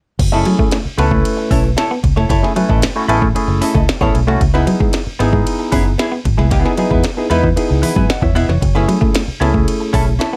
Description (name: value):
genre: funk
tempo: 114 BPM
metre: 4/4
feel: straight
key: F# dorian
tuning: A4 = 441 Hz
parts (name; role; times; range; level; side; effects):
- archtop guitar, miked and amplified; accompaniment; 0.2-10.3 s; B3 to D#5; -23 LUFS; equal; wah
- vintage muted fingered electric bass; bass; 0.2-10.2 s; E1 to G#2; -19 LUFS; equal; none
- minimal click drum kit; drums; 0.2-10.3 s; crash cymbal, hi-hat, kick drum, ride cymbal, snare drum; -20 LUFS; equal; none
- semi-hollow electric guitar; riff; 0.3-10.4 s; E3 to C#4; -23 LUFS; equal; none
- barky tine electric piano; stabs; 0.3-10.1 s; A3 to B5; -21 LUFS; equal; overdrive, phaser
room: light reverb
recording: none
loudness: -15 LUFS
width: mono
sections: 0.2-10.4 A section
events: stop 0.0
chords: 0.2 F#m7; 4.4 C#m7; 8.6 F#m7